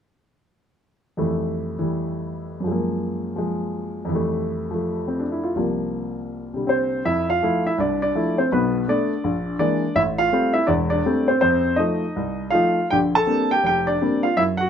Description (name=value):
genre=solo jazz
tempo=164 BPM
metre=4/4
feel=swing 63% on 8ths, rubato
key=F major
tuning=A4 = 440 Hz
part: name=warm baby grand piano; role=solo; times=1.2-14.7 s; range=E1 to A5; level=-20 LUFS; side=equal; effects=none
room=light reverb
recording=none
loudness=-20 LUFS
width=side -8 dB against mid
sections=1.2-7.0 A section; 7.0-14.7 B section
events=none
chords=1.2 Fmaj9; 2.6 Gbmaj9; 4.1 Fmaj9; 5.5 C7sus4; 7.0 Fmaj7; 8.5 Bm7; 9.2 Bb7#11; 10.0 Am7; 11.4 F7; 12.9 Bb69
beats=| 1.19 1.56 1.92 2.28 | 2.65 3.01 3.37 3.73 | 4.09 4.45 4.81 5.18 | 5.54 5.91 6.29 6.66 | 7.04 7.41 7.78 8.15 | 8.51 8.88 9.24 9.60 | 9.96 10.32 10.68 11.05 | 11.42 11.78 12.15 12.53 | 12.90 13.27 13.64 14.01 | 14.38